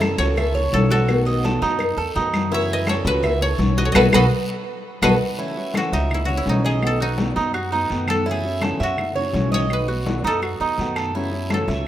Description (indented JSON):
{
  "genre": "latin, Cuban son and guajira",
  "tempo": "167 BPM",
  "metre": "4/4",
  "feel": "straight",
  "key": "unclear",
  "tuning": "A4 = 441 Hz",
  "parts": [
    { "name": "koto", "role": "melody", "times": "0.0-11.9 s", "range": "D#4 to F#5", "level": "-25 LUFS", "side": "equal", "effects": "none" },
    { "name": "warm chamber violin section", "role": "second line", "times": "0.0-5.1 s", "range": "F#4 to C#5", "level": "-27 LUFS", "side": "equal", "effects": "none" },
    { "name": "nylon-string guitar", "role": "accompaniment", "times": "0.0-11.9 s", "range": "B2 to F#4", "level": "-27 LUFS", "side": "left 2 dB", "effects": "none" },
    { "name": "Cuban tres", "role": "arpeggios", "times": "0.0-11.9 s", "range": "D#4 to E5", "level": "-25 LUFS", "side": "right 4 dB", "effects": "none" },
    { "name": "upright bass", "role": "bass", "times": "0.0-11.9 s", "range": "B1 to F#2", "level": "-24 LUFS", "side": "equal", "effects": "none" },
    { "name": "claves", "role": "percussion", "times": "0.0-11.7 s", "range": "none", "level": "-29 LUFS", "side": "right 2 dB", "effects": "none" },
    { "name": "congas", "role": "percussion", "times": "0.0-11.9 s", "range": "none", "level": "-26 LUFS", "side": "left 3 dB", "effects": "none" },
    { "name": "cowbell", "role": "percussion", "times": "0.0-5.1 s", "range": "none", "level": "-28 LUFS", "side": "left 4 dB", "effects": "none" },
    { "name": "guiro", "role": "percussion", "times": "0.0-11.9 s", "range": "none", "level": "-38 LUFS", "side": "left 2 dB", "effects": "none" }
  ],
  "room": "light reverb",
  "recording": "rough home demo mix",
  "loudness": "-18 LUFS",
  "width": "side -12 dB against mid",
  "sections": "0.0-5.4 A section; 5.4-11.9 B section",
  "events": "band accent 4.0-5.4; koto solo 5.4-11.9",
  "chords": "0.0 F#m7; 1.1 B7; 2.5 F#m7; 4.0 B7; 5.4 F#m7; 6.8 B7; 8.3 F#m7; 9.7 B7; 11.1 F#m7",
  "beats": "0.02 0.37 0.73 | 1.09 1.45 1.80 2.16 | 2.52 2.88 3.24 3.60 | 3.95 4.31 4.67 5.03 | 5.39 5.75 6.11 6.47 | 6.83 7.19 7.54 7.91 | 8.27 8.62 8.98 9.35 | 9.71 10.06 10.43 10.79 | 11.14 11.50 11.86"
}